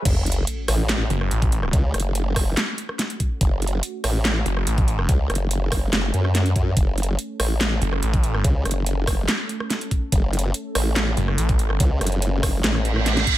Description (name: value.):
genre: heavy wobble dubstep.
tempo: 143 BPM.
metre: 4/4.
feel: half-time.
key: F# minor.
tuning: A4 = 440 Hz.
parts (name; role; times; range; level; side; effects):
lush unison pad; sustained chords; 0.1-13.4 s; A3 to A4; -34 LUFS; right 1 dB; chorus, phaser, sidechain pumping.
formant-sweep wobble bass; bass; 0.1-13.3 s; F#1 to F#2; -22 LUFS; equal; chorus, overdrive.
dubstep drum kit; drums; 0.1-13.4 s; crash cymbal, handclaps, hi-hat, rim click, snare drum; -25 LUFS; right 1 dB; none.
electronic kick drum; drums; 0.1-13.4 s; none; -21 LUFS; equal; none.
sub drop and reverse cymbal; sound effects; 0.1-1.7, 12.8-13.4 s; none; -26 LUFS; right 1 dB; none.
snarling distorted saw bass; bass; 1.1-1.7, 4.5-5.1, 7.8-8.4, 11.2-11.8 s; F#1 to A1; -21 LUFS; equal; distortion, overdrive.
room: digital ambience.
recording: high-pass filter.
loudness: -19 LUFS.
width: side -14 dB against mid.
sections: 0.1-13.4 A section.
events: drop 0.1-13.4; impact 0.1-1.7; reverse cymbal 12.8-13.4; drum fill 13.1-13.4.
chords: 0.1 F#m.